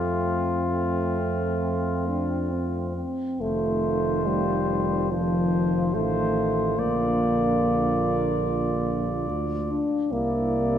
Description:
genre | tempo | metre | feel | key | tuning
classical, hymn-like piece for brass band | 64-73 BPM | 4/4 | rubato | F major | A4 = 441 Hz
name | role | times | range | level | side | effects
warm cornet | melody | 0.0-10.8 s | F4 to D5 | -31 LUFS | left 6 dB | none
mellow flugelhorn | second line | 0.0-10.8 s | C4 to F4 | -33 LUFS | right 8 dB | none
clear euphonium | accompaniment | 0.0-10.8 s | F3 to D4 | -26 LUFS | equal | none
mellow trombone | accompaniment | 0.0-10.8 s | C3 to A3 | -34 LUFS | right 4 dB | none
mellow tuba | bass | 0.0-10.8 s | F1 to F2 | -29 LUFS | equal | none
room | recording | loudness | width
wet church reverb, RT60 3.1 s | none | -22 LUFS | side -9 dB against mid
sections
0.0-3.4 A section; 3.4-10.8 B section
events
none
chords
0.0 F; 3.4 F7; 6.8 Bb; 10.1 C9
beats
0.72 1.63 2.51 | 3.40 4.26 5.11 5.94 | 6.78 7.62 8.46 9.28 | 10.12

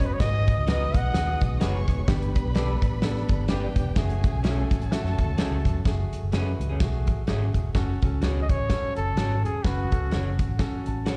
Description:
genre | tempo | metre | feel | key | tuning
uptempo 1960s-style soul | 127 BPM | 4/4 | swing 58% on 8ths | F# dorian | A4 = 439 Hz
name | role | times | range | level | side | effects
warm trumpet | melody | 0.0-1.4, 8.4-10.6 s | F#4 to F#5 | -33 LUFS | equal | slapback echo, analog delay
rich studio violin section | second line | 0.0-5.8 s | G4 to D#6 | -41 LUFS | equal | slapback echo
warm grand piano | accompaniment | 0.0-11.2 s | G#3 to A5 | -37 LUFS | equal | slapback echo
mellow tonewheel organ | sustained chords | 0.0-5.8 s | F#3 to G4 | -40 LUFS | equal | none
vintage muted fingered electric bass | bass | 0.0-11.2 s | E1 to F#2 | -29 LUFS | equal | none
warm soul drum kit | drums | 0.0-11.2 s | hi-hat, kick drum, snare drum | -28 LUFS | equal | none
congas | percussion | 0.0-11.2 s | none | -42 LUFS | equal | none
electric guitar through a small old amp | stabs | 0.7-11.2 s | A3 to C#5 | -38 LUFS | equal | slapback echo
room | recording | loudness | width
light reverb, studio reverb | live gig heard through the venue's PA, recital hall reverb | -25 LUFS | mono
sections
0.0-5.9 A section; 5.9-7.7 B section; 7.7-11.2 C section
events
grand piano fill 10.6-11.2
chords
0.2 G#m7; 2.1 G; 4.0 F#madd9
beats
| 0.20 0.67 1.14 1.61 | 2.08 2.55 3.02 3.50 | 3.97 4.44 4.91 5.38 | 5.86 6.33 6.80 7.28 | 7.75 8.22 8.70 9.17 | 9.64 10.12 10.59 11.06

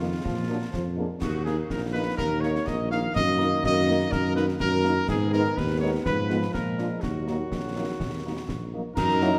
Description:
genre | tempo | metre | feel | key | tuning
military-style march for wind band | 124 BPM | 2/4 | straight | Eb minor | A4 = 441 Hz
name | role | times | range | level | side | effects
clear trumpet section | melody | 0.0-9.4 s | F4 to F5 | -32 LUFS | equal | none
warm French horn section | accompaniment | 0.0-9.3 s | Gb3 to F4 | -35 LUFS | equal | none
warm trombone section | sustained chords | 0.0-9.4 s | Eb3 to Cb4 | -36 LUFS | equal | none
mellow tuba | bass | 0.0-9.4 s | Bb1 to Bb2 | -30 LUFS | equal | none
concert snare drum, concert bass drum and clash cymbals | drums | 0.3-9.3 s | none | -36 LUFS | equal | none
mellow hollow piccolo | second line | 9.0-9.4 s | Bb5 | -28 LUFS | equal | none
warm euphonium | second line | 9.0-9.4 s | Eb4 | -30 LUFS | equal | none
room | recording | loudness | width
moderate scoring stage reverb, RT60 2.1 s | faint mains hum | -26 LUFS | mono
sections
0.0-9.0 A section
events
none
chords
0.3 Bb; 1.2 Eb5; 3.2 Ebm/Gb; 5.1 Abm; 6.1 Fdim/Ab; 6.5 Bb7; 7.0 Ebm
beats
| 0.25 0.74 | 1.22 1.71 | 2.19 2.67 | 3.16 3.64 | 4.12 4.61 | 5.09 5.57 | 6.06 6.54 | 7.03 7.51 | 8.00 8.48 | 8.96

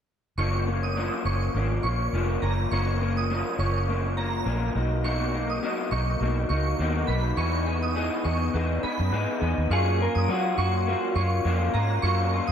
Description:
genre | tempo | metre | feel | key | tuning
indie pop, bedroom pop | 103 BPM | 4/4 | swing 55% on 16ths | F# major | A4 = 441 Hz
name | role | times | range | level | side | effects
shimmering bell with halo | second line | 0.4-12.5 s | A#5 to D#6 | -32 LUFS | right 4 dB | ensemble chorus, tremolo, tape echo
electric guitar through a small old amp | accompaniment | 0.4-12.5 s | F#2 to G#4 | -27 LUFS | left 2 dB | analog chorus, warbly pitch drift
vintage muted fingered electric bass | bass | 0.4-12.5 s | E#1 to F#3 | -26 LUFS | equal | none
electric guitar through a small old amp | melody | 9.7-11.1 s | F#4 to A#4 | -29 LUFS | right 2 dB | wide subtle chorus, tape echo
room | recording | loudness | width
wet lush hall reverb, RT60 1.9 s | dreamy mix soaked in reverb | -23 LUFS | side -8 dB against mid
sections
0.4-9.7 A section; 9.7-12.5 B section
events
none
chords
0.4 F#maj7; 4.8 Bmaj7; 7.4 Emaj7; 9.7 F#maj7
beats
| 0.38 0.96 1.55 2.13 | 2.71 3.30 3.88 4.46 | 5.05 5.63 6.21 6.79 | 7.38 7.96 8.54 9.12 | 9.71 10.29 10.87 11.45 | 12.03

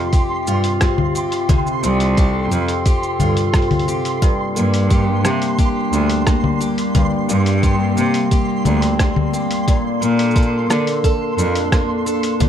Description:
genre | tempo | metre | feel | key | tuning
folktronica | 88 BPM | 4/4 | straight | unclear | A4 = 440 Hz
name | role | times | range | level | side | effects
warbly tape-like pad | sustained chords | 0.0-12.5 s | C3 to A4 | -23 LUFS | left 1 dB | chorus, built-in reverb, vintage 12-bit sampler grit
picked acoustic archtop guitar | arpeggios | 0.0-12.5 s | G2 to A4 | -22 LUFS | equal | tape echo, plate reverb
flickering grainy texture | texture | 0.0-12.5 s | C6 | -27 LUFS | right 4 dB | built-in reverb, plate reverb
electronic kick drum | drums | 0.1-12.5 s | none | -16 LUFS | equal | studio reverb
lo-fi sampler-style drum kit | drums | 0.1-12.5 s | congas, hi-hat, rim click, shaker | -22 LUFS | left 2 dB | studio reverb
bright cello | bass | 0.5-11.5 s | C2 to D3 | -20 LUFS | equal | none
room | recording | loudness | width
light reverb | dark, warm production | -15 LUFS | side -9 dB against mid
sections
0.0-12.5 A section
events
none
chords
0.0 Csus4; 4.2 Gm; 9.7 Bbmaj7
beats
0.13 0.81 | 1.50 2.18 2.86 3.54 | 4.22 4.90 5.59 6.27 | 6.95 7.63 8.31 8.99 | 9.68 10.36 11.04 11.72 | 12.40

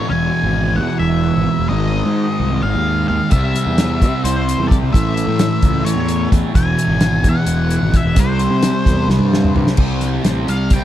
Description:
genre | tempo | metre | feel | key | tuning
psychedelic rock | 260 BPM (eighths) | 7/8 | straight | unclear | A4 = 440 Hz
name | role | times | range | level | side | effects
octave-fuzz lead guitar | melody | 0.0-10.8 s | C5 to G#5 | -23 LUFS | left 2 dB | wah, distortion, dub echo
fuzz guitar | riff | 0.0-10.8 s | E2 to C4 | -18 LUFS | right 1 dB | distortion, phaser, dub echo
fuzz picked electric bass | bass | 0.1-10.8 s | E1 to C3 | -19 LUFS | equal | overdrive
damped 70s drum kit | drums | 3.3-10.8 s | crash cymbal, hi-hat, kick drum, snare drum, toms | -16 LUFS | equal | none
room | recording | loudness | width
small room ambience | echo-heavy mix | -14 LUFS | side -12 dB against mid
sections
0.0-9.8 A section; 9.8-10.8 B section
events
drum fill 9.1-9.8; lead electric guitar solo 9.8-10.8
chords
0.1 E; 1.7 Ab; 3.3 C; 4.9 A; 6.6 E; 8.2 C; 9.8 C5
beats
| 0.09 0.32 0.55 0.78 1.01 1.24 1.47 | 1.70 1.94 2.17 2.40 2.63 2.86 3.09 | 3.32 3.55 3.79 4.02 4.25 4.48 4.71 | 4.94 5.17 5.40 5.63 5.86 6.09 6.33 | 6.56 6.79 7.02 7.25 7.48 7.71 7.94 | 8.17 8.40 8.64 8.87 9.10 9.33 9.56 | 9.79 10.02 10.25 10.48 10.72

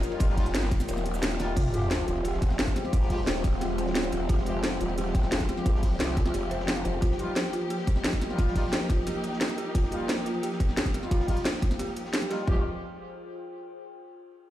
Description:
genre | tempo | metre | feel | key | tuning
dark technical drum and bass | 176 BPM | 4/4 | straight | F minor | A4 = 442 Hz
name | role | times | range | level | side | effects
warm symphonic string section | sustained chords | 0.0-12.6 s | F3 to G4 | -34 LUFS | equal | sidechain pumping
crunchy breakbeat drum kit | drums | 0.0-12.4 s | hi-hat, ride cymbal, snare drum | -44 LUFS | right 1 dB | high-pass filter on cymbals, high-pass filter on hats, high-pass filter on snare, high-pass filter on room
drum and bass drum kit | drums | 0.0-12.4 s | cabasa, crash cymbal, hi-hat, snare drum | -30 LUFS | equal | none
warbly tape-like pad | texture | 0.0-13.8 s | Ab3 to G5 | -37 LUFS | left 3 dB | chorus, built-in reverb, sidechain pumping
clear brass ensemble | stabs | 0.1-12.6 s | G3 to G4 | -38 LUFS | left 2 dB | low-pass filter, ping-pong delay
growl bass | bass | 0.2-7.0, 12.5-12.6 s | Eb1 to C2 | -31 LUFS | equal | chorus, overdrive
electronic kick drum | drums | 0.2-12.6 s | none | -26 LUFS | equal | none
dark detuned synth bell | arpeggios | 1.6-12.6 s | F4 to F5 | -35 LUFS | right 2 dB | chorus, sidechain pumping, low-pass filter, ping-pong delay
sub drop | sound effects | 1.6-2.9 s | none | -32 LUFS | equal | none
room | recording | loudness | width
small room ambience | played on a big sound system in a bare room, stone room reverb | -25 LUFS | side -13 dB against mid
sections
0.0-1.6 A section; 1.6-12.5 B section; 12.5-13.8 C section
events
drop 0.0-1.6; break 0.9-1.6; band accent 1.2; fade-out on ambient pad 1.6-12.5; impact 1.6-2.9; filter sweep on brass ensemble 1.6-12.5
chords
0.0 Ebadd9; 1.6 Fmadd9; 7.0 Ebadd9; 12.5 Fmadd9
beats
| 0.20 0.54 0.89 1.23 | 1.57 1.91 2.25 2.59 | 2.93 3.27 3.61 3.95 | 4.29 4.63 4.98 5.32 | 5.66 6.00 6.34 6.68 | 7.02 7.36 7.70 8.04 | 8.38 8.73 9.07 9.41 | 9.75 10.09 10.43 10.77 | 11.11 11.45 11.79 12.13 | 12.48 12.82 13.16 13.50

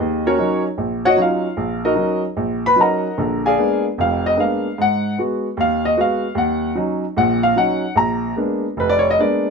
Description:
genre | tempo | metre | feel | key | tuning
solo jazz | 150 BPM | 4/4 | swing 66% on 8ths, rubato | Eb minor | A4 = 440 Hz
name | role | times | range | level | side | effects
warm grand piano | solo | 0.0-9.5 s | F1 to Cb6 | -16 LUFS | equal | none
room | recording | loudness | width
light reverb | none | -16 LUFS | side -5 dB against mid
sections
0.0-9.5 A section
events
grand piano solo 0.0-9.5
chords
0.0 Ebm7; 3.2 Bb7b9; 4.8 Abm7; 6.4 Ebm7; 8.0 Bb7b9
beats
| 0.00 0.39 0.78 1.18 | 1.57 1.97 2.37 2.78 | 3.19 3.59 3.99 4.39 | 4.80 5.19 5.58 5.98 | 6.36 6.76 7.16 7.56 | 7.96 8.36 8.77 9.19

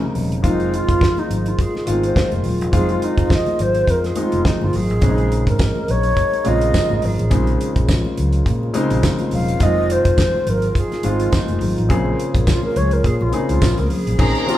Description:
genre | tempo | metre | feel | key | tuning
disco | 105 BPM | 4/4 | swing 56% on 16ths | Bb minor | A4 = 440 Hz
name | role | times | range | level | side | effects
mellow alto flute | melody | 0.0-14.6 s | Eb4 to F5 | -22 LUFS | equal | none
warm baby grand piano | accompaniment | 0.0-14.6 s | C3 to Ab4 | -23 LUFS | left 1 dB | none
dark French horn section | sustained chords | 0.0-14.6 s | Db3 to C5 | -28 LUFS | left 1 dB | none
congas | percussion | 0.0-14.5 s | none | -28 LUFS | left 1 dB | none
fingered electric bass | bass | 0.2-14.3 s | Eb1 to Bb2 | -21 LUFS | equal | none
damped 70s drum kit | drums | 0.2-14.6 s | crash cymbal, hi-hat, kick drum, snare drum | -20 LUFS | equal | none
tambourine | percussion | 5.6-13.8 s | none | -37 LUFS | right 6 dB | none
clear studio string section | second line | 14.2-14.6 s | Bb4 to Bb5 | -22 LUFS | equal | none
room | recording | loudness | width
wet large studio reverb, RT60 1.1 s | band playing live in one room | -15 LUFS | side -13 dB against mid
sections
0.0-14.2 A section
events
alto flute solo 0.0-14.2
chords
0.4 Fm7; 5.0 Bbm11; 9.6 Fm7; 11.9 Bbm9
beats
| 0.44 1.01 1.58 2.16 | 2.73 3.30 3.88 4.45 | 5.02 5.60 6.17 6.74 | 7.32 7.89 8.46 9.03 | 9.61 10.18 10.75 11.32 | 11.90 12.47 13.04 13.62 | 14.19

